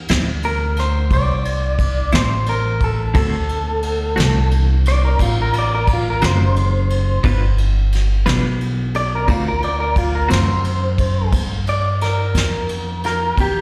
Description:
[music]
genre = slow blues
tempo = 59 BPM (dotted quarters)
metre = 12/8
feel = straight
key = unclear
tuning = A4 = 440 Hz
[part]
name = upright bass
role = bass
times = 0.0-13.6 s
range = F#1 to G2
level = -20 LUFS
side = equal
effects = none
[part]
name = clean electric guitar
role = accompaniment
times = 0.1-10.5 s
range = A2 to B4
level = -25 LUFS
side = equal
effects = tremolo, slapback echo
[part]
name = soft brush drum kit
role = drums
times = 0.1-13.5 s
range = kick drum, ride cymbal, snare drum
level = -25 LUFS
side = equal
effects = none
[part]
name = electric guitar through a small old amp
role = melody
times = 0.5-13.6 s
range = F4 to D5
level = -24 LUFS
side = equal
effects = spring reverb, slapback echo
[sound]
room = little or no reverb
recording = live gig heard through the venue's PA, recital hall reverb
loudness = -18 LUFS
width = mono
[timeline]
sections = 0.0-11.3 A section; 11.3-13.6 B section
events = clean electric guitar solo 0.0-11.3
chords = 0.0 Am7; 3.2 D7; 7.2 G7; 9.3 D7; 11.3 G5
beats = 0.09 1.11 2.13 | 3.15 4.17 5.20 6.22 | 7.24 8.26 9.28 10.30 | 11.33 12.35 13.37

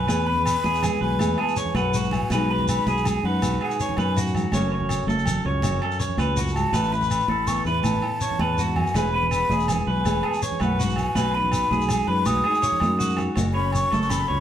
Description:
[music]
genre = highlife guitar band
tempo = 108 BPM (dotted quarters)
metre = 12/8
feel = straight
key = E major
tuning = A4 = 440 Hz
[part]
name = breathy mellow concert flute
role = melody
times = 0.0-14.4 s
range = F#5 to D#6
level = -26 LUFS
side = left 2 dB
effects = none
[part]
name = nylon-string guitar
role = accompaniment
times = 0.0-14.4 s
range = E2 to G#4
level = -29 LUFS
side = left 3 dB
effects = none
[part]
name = electric guitar through a small old amp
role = arpeggios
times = 0.0-14.4 s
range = F#4 to C#5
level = -27 LUFS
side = right 3 dB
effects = none
[part]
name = fingered electric bass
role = bass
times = 0.0-14.4 s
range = E1 to F#2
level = -26 LUFS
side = equal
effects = none
[part]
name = agogo bells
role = percussion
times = 0.1-14.3 s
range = none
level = -35 LUFS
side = right 2 dB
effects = none
[part]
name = congas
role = percussion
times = 0.1-14.2 s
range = none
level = -30 LUFS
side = right 2 dB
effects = none
[part]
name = shekere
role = percussion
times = 0.1-14.2 s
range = none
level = -31 LUFS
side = left 2 dB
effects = none
[sound]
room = moderate stone room reverb, RT60 1.0 s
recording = band playing live in one room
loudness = -20 LUFS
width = side -10 dB against mid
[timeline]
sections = 0.1-14.4 A section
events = none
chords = 0.1 E; 2.3 B6; 4.5 F#m; 6.7 Asus2; 8.9 E; 11.2 B6; 13.4 F#m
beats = | 0.09 0.64 1.20 1.75 | 2.31 2.86 3.42 3.97 | 4.52 5.08 5.63 6.18 | 6.74 7.29 7.84 8.39 | 8.95 9.50 10.05 10.60 | 11.16 11.71 12.26 12.81 | 13.37 13.92

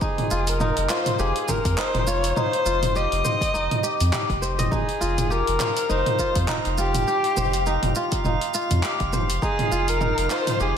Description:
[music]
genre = organic downtempo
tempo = 102 BPM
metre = 4/4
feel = swing 57% on 16ths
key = F minor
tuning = A4 = 439 Hz
[part]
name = dark kamancheh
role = melody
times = 0.0-10.7 s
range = G4 to Eb5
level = -25 LUFS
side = left 1 dB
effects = tape echo
[part]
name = kora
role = arpeggios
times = 0.0-10.8 s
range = Eb4 to Eb5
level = -26 LUFS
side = equal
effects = tape echo
[part]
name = deep house drum kit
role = drums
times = 0.0-10.7 s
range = handclaps, hi-hat, shaker, toms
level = -27 LUFS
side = right 1 dB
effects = none
[part]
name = electronic kick drum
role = drums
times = 0.0-9.6 s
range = none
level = -28 LUFS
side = equal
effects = none
[part]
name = warm sub bass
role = bass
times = 0.3-10.7 s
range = F1 to F2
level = -25 LUFS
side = equal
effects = sidechain pumping
[part]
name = drifting glass-harmonics texture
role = texture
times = 5.3-10.8 s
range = F5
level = -33 LUFS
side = right 5 dB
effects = chorus, built-in reverb
[sound]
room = wet lush hall reverb, RT60 1.7 s, digital ambience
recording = dreamy mix soaked in reverb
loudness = -20 LUFS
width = side -8 dB against mid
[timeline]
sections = 0.0-10.8 A section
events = none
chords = 0.0 F7sus2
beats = | 0.01 0.60 1.19 1.78 | 2.37 2.96 3.54 4.13 | 4.72 5.31 5.90 6.49 | 7.07 7.66 8.25 8.84 | 9.43 10.01 10.60

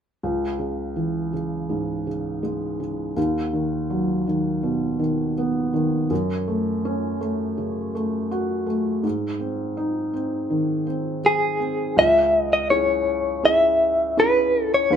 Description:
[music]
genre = acoustic folk-pop ballad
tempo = 82 BPM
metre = 4/4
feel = straight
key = C# minor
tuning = A4 = 441 Hz
[part]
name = felt-muted upright piano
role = accompaniment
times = 0.2-15.0 s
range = C#2 to G#4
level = -23 LUFS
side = equal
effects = none
[part]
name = direct-recorded clean electric guitar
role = melody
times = 11.3-15.0 s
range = G#4 to E5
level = -17 LUFS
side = left 1 dB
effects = tremolo
[sound]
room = moderate studio reverb, RT60 0.6 s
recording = minimal, uncompressed stereo recording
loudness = -20 LUFS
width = side -8 dB against mid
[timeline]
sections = 0.2-12.0 A section; 12.0-15.0 B section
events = none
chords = 0.2 C#m; 3.2 B/D#; 6.1 F#m; 9.0 G#; 12.0 C#m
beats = | 0.23 0.97 1.70 2.44 | 3.17 3.90 4.64 5.37 | 6.11 6.84 7.58 8.31 | 9.04 9.78 10.51 11.24 | 11.98 12.71 13.45 14.18 | 14.91

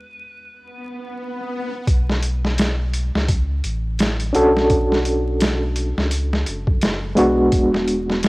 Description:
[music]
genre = trip hop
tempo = 85 BPM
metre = 4/4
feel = swing 58% on 16ths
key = B dorian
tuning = A4 = 440 Hz
[part]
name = electric slide guitar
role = melody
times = 0.0-1.1 s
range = B4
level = -40 LUFS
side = equal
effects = cassette tape, tape echo
[part]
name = reed electric piano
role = accompaniment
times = 0.0-8.3 s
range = E2 to A4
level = -18 LUFS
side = equal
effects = fast tremolo, cassette tape, tape echo
[part]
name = swell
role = sound effects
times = 0.7-1.9 s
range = none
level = -30 LUFS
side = left 1 dB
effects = none
[part]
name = warm sub bass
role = bass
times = 1.9-8.3 s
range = E1 to C#2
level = -23 LUFS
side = equal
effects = none
[part]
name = boom bap sampler-style drum kit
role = drums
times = 1.9-8.3 s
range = hi-hat, kick drum, snare drum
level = -20 LUFS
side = equal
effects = overdrive, vintage 12-bit sampler grit
[sound]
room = light reverb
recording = home recording on cassette, vinyl crackle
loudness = -17 LUFS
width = side -23 dB against mid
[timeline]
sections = 0.0-1.9 A section; 1.9-8.3 B section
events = filter sweep 0.0-1.9; swell 0.7-1.9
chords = 0.0 E7; 1.9 Bm9; 7.5 E7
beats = 0.46 1.17 | 1.87 2.58 3.29 3.99 | 4.70 5.40 6.11 6.81 | 7.52 8.23

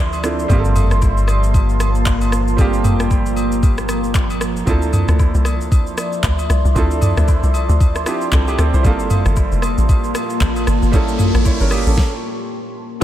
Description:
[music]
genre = amapiano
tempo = 115 BPM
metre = 4/4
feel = swing 58% on 16ths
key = D minor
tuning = A4 = 442 Hz
[part]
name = bright concert grand piano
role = accompaniment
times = 0.0-13.0 s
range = F3 to C#5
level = -24 LUFS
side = right 4 dB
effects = none
[part]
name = deep dark ambient pad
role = sustained chords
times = 0.0-13.0 s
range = F3 to C6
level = -22 LUFS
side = equal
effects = chorus, built-in reverb, sidechain pumping
[part]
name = solid FM bass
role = bass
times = 0.0-4.6 s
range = G1 to D2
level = -18 LUFS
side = equal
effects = none
[part]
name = smooth R&B drum kit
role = drums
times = 0.1-12.1 s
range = handclaps, kick drum, rim click, shaker, snare drum, toms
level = -18 LUFS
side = equal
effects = none
[part]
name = agogo bells and woodblock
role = percussion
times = 0.1-11.9 s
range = none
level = -32 LUFS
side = left 4 dB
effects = none
[part]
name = tight log drum bass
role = bass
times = 4.7-12.0 s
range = F1 to D2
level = -17 LUFS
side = equal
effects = none
[part]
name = riser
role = sound effects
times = 10.1-12.0 s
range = none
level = -31 LUFS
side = equal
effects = none
[sound]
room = light reverb, digital ambience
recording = none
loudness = -14 LUFS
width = side -12 dB against mid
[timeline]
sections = 0.0-13.0 A section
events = riser 10.1-13.0; stop 12.0-13.0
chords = 0.5 Gm11; 4.7 Dm9; 8.8 Gm11; 10.9 A7b9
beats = | 0.50 1.02 1.54 2.06 | 2.58 3.11 3.63 4.15 | 4.67 5.19 5.71 6.24 | 6.76 7.28 7.80 8.32 | 8.85 9.37 9.89 10.41 | 10.93 11.45 11.98 12.50 | 13.02

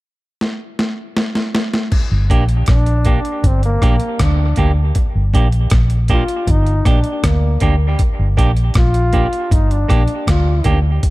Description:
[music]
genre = dub reggae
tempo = 79 BPM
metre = 4/4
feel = straight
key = G minor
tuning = A4 = 441 Hz
[part]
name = dusty soul sampler-style drum kit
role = drums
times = 0.4-11.1 s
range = crash cymbal, hi-hat, kick drum, rim click, snare drum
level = -16 LUFS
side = equal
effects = overdrive
[part]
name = vintage muted fingered electric bass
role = bass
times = 2.1-11.0 s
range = G1 to D2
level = -14 LUFS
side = equal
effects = none
[part]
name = semi-hollow electric guitar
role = accompaniment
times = 2.3-10.8 s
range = Bb3 to G4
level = -23 LUFS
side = right 4 dB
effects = dub echo
[part]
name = clear trombone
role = melody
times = 2.7-10.8 s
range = Bb3 to F4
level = -22 LUFS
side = left 1 dB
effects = dub echo
[sound]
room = digital ambience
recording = echo-heavy mix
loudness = -13 LUFS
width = side -19 dB against mid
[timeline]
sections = 0.0-1.9 A section; 1.9-11.1 B section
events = drum fill 0.4-1.9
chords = 0.0 N.C.; 1.9 Gm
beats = 0.40 1.16 | 1.92 2.68 3.44 4.20 | 4.96 5.72 6.48 7.24 | 8.00 8.76 9.52 10.27 | 11.03

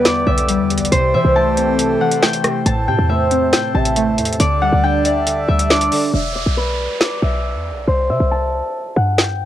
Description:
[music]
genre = hip hop, drill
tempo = 138 BPM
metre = 4/4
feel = half-time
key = E minor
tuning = A4 = 440 Hz
[part]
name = Celtic harp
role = melody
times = 0.0-9.5 s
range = B4 to A5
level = -19 LUFS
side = left 2 dB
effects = low-pass filter, cassette tape
[part]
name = gliding portamento lead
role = second line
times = 0.0-6.1 s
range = A4 to E5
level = -22 LUFS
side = right 3 dB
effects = chorus, cassette tape, analog delay
[part]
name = warbly lo-fi synth keys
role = accompaniment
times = 0.0-6.2 s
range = E2 to D5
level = -20 LUFS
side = equal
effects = chorus, low-pass filter, cassette tape
[part]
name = accordion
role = sustained chords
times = 0.0-6.1 s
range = E3 to D5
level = -28 LUFS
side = equal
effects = cassette tape
[part]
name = drill drum kit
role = drums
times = 0.1-9.3 s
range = hi-hat, rim click, snare drum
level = -18 LUFS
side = equal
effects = cassette tape
[part]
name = short 808-style bass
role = bass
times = 0.3-9.5 s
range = E1 to C3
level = -19 LUFS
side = equal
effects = none
[part]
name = downlifter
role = sound effects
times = 6.1-9.5 s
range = none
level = -29 LUFS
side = right 3 dB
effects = none
[sound]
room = light reverb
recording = home recording on cassette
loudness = -14 LUFS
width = side -12 dB against mid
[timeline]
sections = 0.0-6.1 A section; 6.1-9.5 B section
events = break 6.1-9.5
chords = 0.0 Em7; 0.9 C6; 2.7 Am; 4.4 Dsus4; 6.1 E5; 7.9 C5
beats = 0.05 0.49 | 0.92 1.35 1.79 2.23 | 2.66 3.09 3.53 3.96 | 4.40 4.83 5.27 5.70 | 6.14 6.57 7.01 7.44 | 7.88 8.31 8.75 9.18

